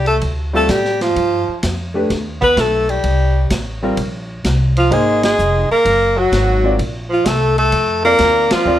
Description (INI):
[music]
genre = jazz, small-group swing and bop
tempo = 128 BPM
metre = 4/4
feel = swing 68% on 8ths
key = Bb major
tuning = A4 = 437 Hz
[part]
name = clear alto saxophone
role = melody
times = 0.0-8.8 s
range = F4 to B4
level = -16 LUFS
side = left 1 dB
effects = plate reverb
[part]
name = warm tenor saxophone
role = second line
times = 0.0-8.8 s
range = F3 to B3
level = -19 LUFS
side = right 2 dB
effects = none
[part]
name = upright bass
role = bass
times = 0.0-8.8 s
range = F1 to A2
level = -19 LUFS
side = equal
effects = none
[part]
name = vintage drum kit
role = drums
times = 0.1-8.6 s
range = hi-hat, kick drum, ride cymbal, snare drum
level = -25 LUFS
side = equal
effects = none
[part]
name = warm concert grand piano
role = accompaniment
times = 0.5-8.8 s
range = G3 to D5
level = -19 LUFS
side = left 1 dB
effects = none
[sound]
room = light reverb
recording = none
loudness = -13 LUFS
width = side -12 dB against mid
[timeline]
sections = 0.0-8.8 A section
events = band accent 5.2, 8.4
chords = 0.0 Bbmaj9 (rootless); 1.2 G7b13; 3.0 C7(no3); 4.9 Ab9; 6.8 Bbmaj9